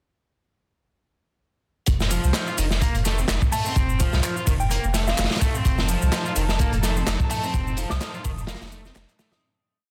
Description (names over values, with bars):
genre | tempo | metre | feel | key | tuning
breakbeat, breaks | 127 BPM | 4/4 | swing 55% on 16ths | unclear | A4 = 440 Hz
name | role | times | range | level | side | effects
saturated sub bass | bass | 1.9-9.1 s | F1 to C2 | -27 LUFS | equal | none
crunchy breakbeat drum kit | drums | 1.9-9.4 s | hi-hat, kick drum, snare drum | -26 LUFS | equal | none
garage drum kit | drums | 1.9-9.4 s | handclaps, ride cymbal, shaker | -35 LUFS | equal | none
raw garage guitar | riff | 2.1-9.4 s | Eb3 to F4 | -32 LUFS | equal | overdrive, tube saturation, spring reverb
soft synth bell | melody | 3.5-9.4 s | F5 to Eb6 | -35 LUFS | equal | chorus, phaser, telephone sound, vintage 12-bit sampler grit, tape echo
warm studio string section | sustained chords | 5.7-9.4 s | F3 to A4 | -35 LUFS | equal | sidechain pumping
room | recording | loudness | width
small room ambience | dense, heavily limited modern master | -23 LUFS | mono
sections
1.9-9.4 drop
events
drop 1.9-9.4; fade-out 6.9-9.4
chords
1.9 F7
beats
| 1.87 2.35 2.82 3.29 | 3.76 4.24 4.71 5.18 | 5.65 6.12 6.60 7.07 | 7.54 8.01 8.49 8.96